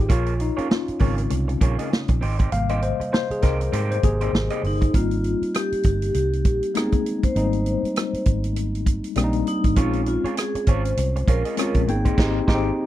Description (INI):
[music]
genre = lush 1970s-style soul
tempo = 99 BPM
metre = 4/4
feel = swing 58% on 16ths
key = Ab major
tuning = A4 = 440 Hz
[part]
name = mellow tine electric piano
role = accompaniment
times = 0.0-12.9 s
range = C3 to G5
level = -25 LUFS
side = left 4 dB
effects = medium stereo tremolo
[part]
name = vintage muted fingered electric bass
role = bass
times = 0.0-12.7 s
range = G1 to Ab2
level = -24 LUFS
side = right 1 dB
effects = none
[part]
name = electric guitar through a small old amp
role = riff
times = 0.1-4.9, 9.8-12.7 s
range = Ab3 to Eb5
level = -31 LUFS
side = right 5 dB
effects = spring reverb
[part]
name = vintage drum kit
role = drums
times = 0.1-12.7 s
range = crash cymbal, hi-hat, kick drum, rim click, snare drum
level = -22 LUFS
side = right 1 dB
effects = none
[part]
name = vibraphone with medium mallets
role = melody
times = 4.7-12.9 s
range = Eb4 to C5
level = -26 LUFS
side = equal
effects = none
[sound]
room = little or no reverb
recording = dry, close 1970s-style studio recording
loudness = -19 LUFS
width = side -13 dB against mid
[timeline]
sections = 0.0-4.9 A section; 4.9-12.9 B section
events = tine electric piano solo 0.0-4.9; band accent 12.2-12.9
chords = 0.1 Bbm7; 2.2 Abmaj7; 9.8 Bbm7; 11.9 Abmaj7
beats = | 0.10 0.71 1.31 1.92 | 2.52 3.13 3.73 4.34 | 4.94 5.54 6.15 6.75 | 7.36 7.96 8.56 9.17 | 9.77 10.37 10.98 11.58 | 12.18 12.78